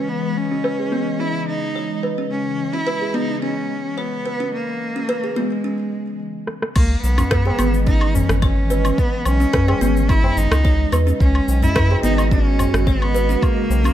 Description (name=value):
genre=organic downtempo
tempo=108 BPM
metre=4/4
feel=straight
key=C# dorian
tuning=A4 = 439 Hz
part: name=rich cello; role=melody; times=0.0-13.9 s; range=G#3 to E4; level=-23 LUFS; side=equal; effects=digital delay
part: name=warbly tape-like pad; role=sustained chords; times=0.0-13.9 s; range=C#3 to D#5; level=-27 LUFS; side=left 1 dB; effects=chorus, built-in reverb, phaser, sidechain pumping
part: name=kalimba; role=arpeggios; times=0.0-13.9 s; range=B3 to C#5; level=-24 LUFS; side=right 1 dB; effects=low-pass filter, digital delay
part: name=deep house drum kit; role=drums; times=0.1-13.9 s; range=cabasa, crash cymbal, rim click, woodblock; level=-26 LUFS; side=left 1 dB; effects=overdrive, low-pass filter on perc, small room reverb, low-pass filter on snare, low-pass filter on cymbals
part: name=round analog bass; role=bass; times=6.8-13.9 s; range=G#1 to F#2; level=-18 LUFS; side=equal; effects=none
part: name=electronic kick drum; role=drums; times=6.8-13.5 s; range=none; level=-19 LUFS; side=equal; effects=overdrive, small room reverb
part: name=tabla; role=percussion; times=7.0-13.8 s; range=none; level=-27 LUFS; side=left 2 dB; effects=none
room=light reverb, small room ambience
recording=dark, warm production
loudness=-16 LUFS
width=side -12 dB against mid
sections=0.0-6.8 A section; 6.8-13.9 B section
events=stop 6.2-6.8; drum fill 6.5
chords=0.0 C#m7